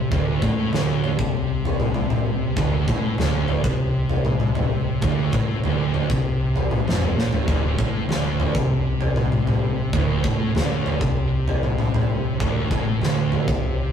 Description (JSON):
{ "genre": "stoner and doom metal", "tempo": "98 BPM", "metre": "4/4", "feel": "straight", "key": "D minor", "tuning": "A4 = 439 Hz", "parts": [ { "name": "thick fuzz guitar", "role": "riff", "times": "0.0-13.9 s", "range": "D2 to C3", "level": "-26 LUFS", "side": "left 2 dB", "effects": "distortion" }, { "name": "thick fuzz guitar", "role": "riff", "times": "0.0-13.9 s", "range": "D2 to C3", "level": "-28 LUFS", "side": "right 4 dB", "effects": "distortion" }, { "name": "upright bass", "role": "bass", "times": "0.0-13.9 s", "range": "D1 to C2", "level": "-27 LUFS", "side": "equal", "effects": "overdrive" }, { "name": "big rock drum kit", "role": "drums", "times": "0.1-13.6 s", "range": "kick drum, snare drum, toms", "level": "-22 LUFS", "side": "equal", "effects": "none" } ], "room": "moderate studio reverb, RT60 0.5 s", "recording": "rough rehearsal-room recording", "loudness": "-19 LUFS", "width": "side -8 dB against mid", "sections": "0.0-13.9 A section", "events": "drum fill 7.2-7.5", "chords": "0.0 D5" }